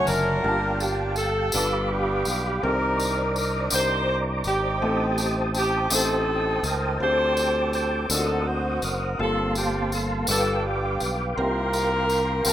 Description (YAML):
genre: slow gospel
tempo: 55 BPM (dotted quarters)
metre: 6/8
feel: straight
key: G minor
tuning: A4 = 438 Hz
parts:
  - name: warm saxophone section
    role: melody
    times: 0.0-12.5 s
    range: B3 to C5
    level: -25 LUFS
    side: equal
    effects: tape echo
  - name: warm upright piano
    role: accompaniment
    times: 0.0-12.5 s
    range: G2 to B5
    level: -30 LUFS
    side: left 1 dB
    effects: none
  - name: mellow tonewheel organ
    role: sustained chords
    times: 0.0-12.5 s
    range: C#3 to Eb6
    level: -28 LUFS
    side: right 1 dB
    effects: slow rotary speaker, chorus vibrato
  - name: modern bright fingered electric bass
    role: bass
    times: 0.0-12.5 s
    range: F#1 to D2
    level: -29 LUFS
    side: equal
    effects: none
  - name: tambourine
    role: percussion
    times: 0.1-12.5 s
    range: none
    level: -29 LUFS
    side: left 2 dB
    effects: none
room: light reverb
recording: rough home demo mix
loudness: -21 LUFS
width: side -11 dB against mid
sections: 0.5-12.5 A section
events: none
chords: 0.5 Gm9; 1.5 G7; 2.6 Cm9; 4.8 Am7b5; 7.0 D7sus4; 8.1 D7b9b13; 9.2 Gm11; 10.3 G7; 11.4 C7sus4